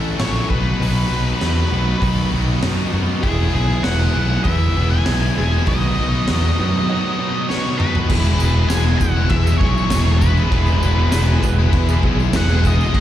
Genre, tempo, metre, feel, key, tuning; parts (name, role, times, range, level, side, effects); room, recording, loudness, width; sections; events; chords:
classic rock; 99 BPM; 4/4; straight; E major; A4 = 440 Hz
distorted electric guitar; riff; 0.0-13.0 s; A2 to E4; -24 LUFS; left 11 dB; overdrive, slapback echo
sludgy distorted guitar; riff; 0.0-13.0 s; E2 to A4; -26 LUFS; right 9 dB; overdrive, slapback echo
fuzz fingered electric bass; bass; 0.0-13.0 s; E1 to F#2; -18 LUFS; equal; overdrive
octave-fuzz lead guitar; melody; 0.2-13.0 s; G#4 to G#5; -25 LUFS; left 1 dB; distortion, tape echo
raw garage drum kit; drums; 0.2-13.0 s; crash cymbal, hi-hat, kick drum, snare drum, toms; -21 LUFS; equal
reed electric piano; accompaniment; 3.2-13.0 s; D#4 to C#5; -31 LUFS; right 2 dB; tremolo
fuzz guitar; riff; 8.1-13.0 s; E2 to F#3; -26 LUFS; equal
tambourine; percussion; 8.2-12.9 s; -36 LUFS; right 3 dB
small room ambience; live gig heard through the venue's PA, recital hall reverb; -15 LUFS; side -12 dB against mid
0.0-8.1 A section; 8.1-13.0 B section
drum fill 7.5-8.1
0.0 A; 0.5 B; 3.2 E; 5.7 B; 8.1 Eadd9